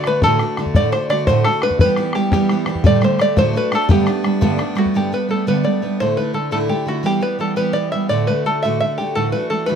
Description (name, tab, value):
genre	celtic folk, Celtic jig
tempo	114 BPM (dotted quarters)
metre	6/8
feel	straight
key	unclear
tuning	A4 = 440 Hz
part	open-back banjo	melody	0.0-9.8 s	F#4 to E5	-19 LUFS	equal	plate reverb
part	picked steel-string acoustic guitar	accompaniment	0.0-9.8 s	D2 to G4	-18 LUFS	right 2 dB	none
part	bodhran	percussion	0.0-4.9 s	none	-19 LUFS	left 2 dB	none
room	moderate studio reverb, RT60 0.6 s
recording	close, detailed microphones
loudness	-15 LUFS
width	side -7 dB against mid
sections	0.0-4.9 A section; 4.9-9.8 B section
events	none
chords	0.0 D; 1.8 Em; 2.8 Dsus4; 3.4 D; 3.9 Gadd9; 6.0 Dsus2; 7.0 Em; 8.1 D; 9.1 Dadd9